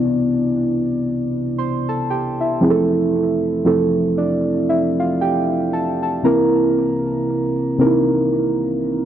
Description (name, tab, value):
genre	R&B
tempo	58 BPM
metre	4/4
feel	swing 58% on 16ths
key	C major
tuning	A4 = 440 Hz
part	muted felt-like synth keys	solo	0.0-9.1 s	C3 to C6	-16 LUFS	right 1 dB	chorus, tape echo
room	light reverb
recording	dry, gritty hardware recording, cassette tape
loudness	-16 LUFS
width	side -10 dB against mid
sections	0.0-9.1 A section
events	synth keys fill 3.6-6.8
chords	0.0 Cmaj9; 2.6 Fmaj7; 6.2 C7